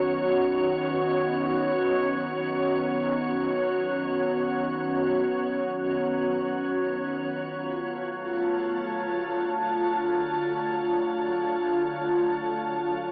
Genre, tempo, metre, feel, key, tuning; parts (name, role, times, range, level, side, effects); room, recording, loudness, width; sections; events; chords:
ambient; free time; A4 = 440 Hz
glassy FM pad; sustained chords; 0.0-13.1 s; D3 to A5; -25 LUFS; equal; ensemble chorus, built-in reverb, shimmer reverb
organ-like drone; drone; 0.0-13.1 s; F#3 to C#5; -32 LUFS; equal; ensemble chorus, built-in reverb
wet lush hall reverb, RT60 2.2 s; home recording on cassette, AM radio sound; -24 LUFS; side -36 dB against mid
0.0-13.1 A section
fade-out on synth drone 0.0-13.1
0.0 Badd9; 7.1 Dm